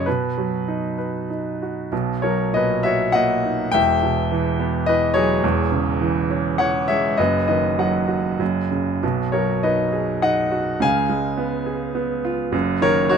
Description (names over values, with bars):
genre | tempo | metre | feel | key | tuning
classical, lyrical solo piano | 92-106 BPM | 3/4 | rubato | B major | A4 = 440 Hz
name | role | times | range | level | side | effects
clear grand piano | solo | 0.0-13.2 s | E1 to G#5 | -18 LUFS | equal | none
room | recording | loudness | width
little or no reverb | close, detailed microphones | -18 LUFS | side -6 dB against mid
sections
0.0-1.9 A section; 1.9-13.2 A section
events
none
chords
0.1 B; 1.9 Bmaj7; 3.7 Emadd9; 5.4 C#m/E; 7.2 B/F#; 8.4 F#5; 9.0 B6; 10.8 C#7; 12.5 B/F# (rootless)